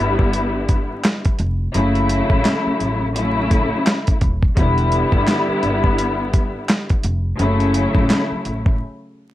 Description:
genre	hip hop, boom-bap hip-hop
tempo	85 BPM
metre	4/4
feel	swing 59% on 16ths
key	E dorian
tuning	A4 = 441 Hz
part	warm studio string section	accompaniment	0.0-8.7 s	C#3 to E4	-19 LUFS	left 1 dB	high-pass filter, low-pass filter
part	upright bass	bass	0.0-8.8 s	D#1 to A1	-22 LUFS	equal	none
part	dusty soul sampler-style drum kit	drums	0.2-8.8 s	handclaps, hi-hat, kick drum, snare drum	-18 LUFS	equal	overdrive, vintage 12-bit sampler grit
room	light reverb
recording	vinyl crackle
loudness	-16 LUFS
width	side -14 dB against mid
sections	0.0-9.3 A section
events	break 8.8-9.3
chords	0.0 Em7; 1.7 F#m7; 4.6 Em7; 7.4 F#m7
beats	0.33 1.04 | 1.75 2.45 3.16 3.86 | 4.57 5.28 5.98 6.69 | 7.39 8.10

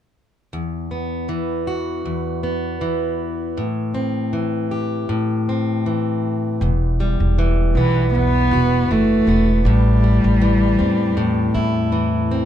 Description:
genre	acoustic pop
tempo	79 BPM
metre	4/4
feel	swing 55% on 16ths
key	E minor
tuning	A4 = 441 Hz
part	fingerpicked plugged-in steel-string acoustic guitar	accompaniment	0.5-12.5 s	E2 to G4	-20 LUFS	left 1 dB	none
part	upright bass	bass	6.6-12.5 s	E1 to E2	-18 LUFS	equal	none
part	dark cello	melody	7.8-11.9 s	E3 to B3	-19 LUFS	equal	none
room	little or no reverb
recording	dark, warm production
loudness	-17 LUFS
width	side -10 dB against mid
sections	0.5-6.6 A section; 6.6-12.5 B section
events	none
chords	0.5 Esus2; 3.6 Am7; 6.6 Emadd9; 9.7 Am7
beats	| 0.53 1.29 2.05 2.81 | 3.57 4.33 5.09 5.85 | 6.61 7.37 8.13 8.89 | 9.65 10.41 11.17 11.93

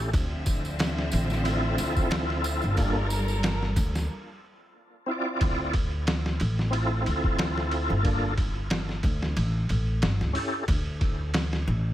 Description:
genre	trip hop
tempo	91 BPM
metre	4/4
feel	swing 55% on 16ths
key	D minor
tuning	A4 = 440 Hz
part	overdriven tonewheel organ	accompaniment	0.0-10.7 s	Bb3 to D5	-31 LUFS	equal	chorus vibrato, fast rotary speaker, tremolo, tape echo
part	rich studio string section	sustained chords	0.0-4.1 s	D3 to E5	-32 LUFS	equal	none
part	upright bass	bass	0.0-11.9 s	G1 to D2	-28 LUFS	equal	none
part	trip hop sampler-style drum kit	drums	0.1-11.7 s	hi-hat, kick drum, ride cymbal, snare drum	-29 LUFS	equal	small room reverb
part	tambourine	percussion	0.1-4.1 s	none	-41 LUFS	right 2 dB	none
room	studio ambience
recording	none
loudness	-24 LUFS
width	side -13 dB against mid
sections	0.0-5.4 A section; 5.4-11.9 B section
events	filter sweep on tonewheel organ 0.0-5.4; break 4.1-5.4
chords	0.1 Dm9; 2.8 Gm9; 4.1 Cadd9; 5.4 Dm9; 8.0 Gm9; 9.4 A7; 10.7 D5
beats	| 0.13 0.79 1.45 2.11 | 2.77 3.43 4.09 4.75 | 5.41 6.07 6.72 7.38 | 8.04 8.70 9.36 10.02 | 10.68 11.34

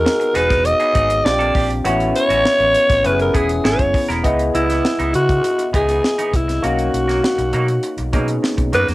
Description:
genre	polished 1980s jazz-funk pop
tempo	100 BPM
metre	4/4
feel	straight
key	unclear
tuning	A4 = 441 Hz
part	growling alto saxophone	melody	0.0-8.9 s	E4 to D#5	-17 LUFS	equal	cassette tape
part	barky tine electric piano	accompaniment	0.0-8.9 s	A#3 to D#5	-22 LUFS	left 1 dB	overdrive, lush chorus, cassette tape
part	semi-hollow electric guitar	riff	0.0-8.9 s	E3 to A#4	-26 LUFS	right 2 dB	lush chorus, cassette tape
part	overdriven fingered electric bass	bass	0.0-8.9 s	E1 to C#3	-22 LUFS	equal	none
part	tight funk drum kit	drums	0.1-8.9 s	hi-hat, kick drum, snare drum	-21 LUFS	equal	none
room	moderate studio reverb, RT60 0.6 s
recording	home recording on cassette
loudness	-14 LUFS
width	side -18 dB against mid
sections	0.0-4.2 A section; 4.2-8.9 B section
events	alto saxophone solo 4.2-8.9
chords	0.0 Emaj7; 1.3 A#6; 1.9 A6; 3.0 F#9sus4; 4.2 C#m9; 6.6 Bmaj7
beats	0.06 0.65 1.25 | 1.85 2.45 3.05 3.65 | 4.24 4.84 5.44 6.04 | 6.64 7.24 7.83 8.43

